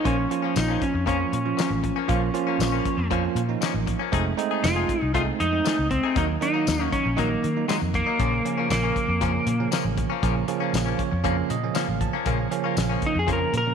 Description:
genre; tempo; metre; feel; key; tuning
straight-eighth soul blues; 118 BPM; 4/4; straight; Bb harmonic minor; A4 = 440 Hz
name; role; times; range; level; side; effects
electric slide guitar; melody; 0.0-9.7, 13.1-13.7 s; Ab3 to Bb4; -25 LUFS; left 1 dB; none
bell-like tine electric piano; accompaniment; 0.0-13.7 s; Db3 to A5; -27 LUFS; right 12 dB; none
direct-recorded clean electric guitar; stabs; 0.0-13.6 s; Bb2 to G#4; -30 LUFS; left 10 dB; tape echo
vintage muted fingered electric bass; bass; 0.1-13.7 s; F1 to Eb3; -27 LUFS; left 1 dB; none
damped 70s drum kit; drums; 0.1-13.7 s; hi-hat, kick drum, snare drum, tambourine; -30 LUFS; left 3 dB; none
room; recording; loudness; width
moderate echo chamber reverb, RT60 2.0 s; 1960s-style stereo with parts hard left and right; -21 LUFS; side -7 dB against mid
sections
0.0-12.3 A section; 12.3-13.7 B section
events
tine electric piano fill 10.7-12.3; electric slide guitar solo 12.3-13.7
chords
0.0 Bbm; 4.1 F7#9; 6.2 Ebm; 8.2 Bbm

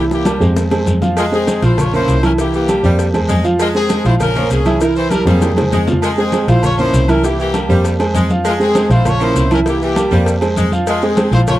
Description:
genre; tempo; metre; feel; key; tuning
latin, salsa; 198 BPM; 4/4; straight; F harmonic minor; A4 = 441 Hz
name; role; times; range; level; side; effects
clear horn section; melody; 0.0-11.6 s; Ab3 to Db5; -19 LUFS; left 2 dB; none
clear grand piano; accompaniment; 0.0-11.6 s; E3 to F5; -17 LUFS; right 2 dB; none
rich double bass; bass; 0.0-11.6 s; Bb1 to F2; -16 LUFS; equal; none
bongos and cowbell; percussion; 0.1-11.6 s; none; -26 LUFS; left 6 dB; none
congas; percussion; 0.1-11.6 s; none; -21 LUFS; left 1 dB; none
maracas; percussion; 0.1-11.6 s; none; -34 LUFS; left 6 dB; none
agogo bells and timbales; percussion; 0.3-11.6 s; none; -27 LUFS; right 5 dB; none
guiro; percussion; 0.3-11.6 s; none; -35 LUFS; left 5 dB; none
edgy saxophone section; second line; 1.2-11.3 s; E3 to Ab3; -22 LUFS; left 1 dB; none
room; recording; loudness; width
little or no reverb; dry, close 1970s-style studio recording; -12 LUFS; side -15 dB against mid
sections
0.0-6.0 A section; 6.0-11.6 A section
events
drum fill 0.0-1.2, 5.1-6.0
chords
0.0 C7; 0.6 Fm; 1.8 Bbm; 2.4 C7; 3.0 Fm; 4.2 Bbm; 4.8 C7; 5.4 Fm; 6.6 Bbm; 7.2 C7; 7.8 Fm; 9.1 Bbm; 9.7 C7; 10.3 Fm

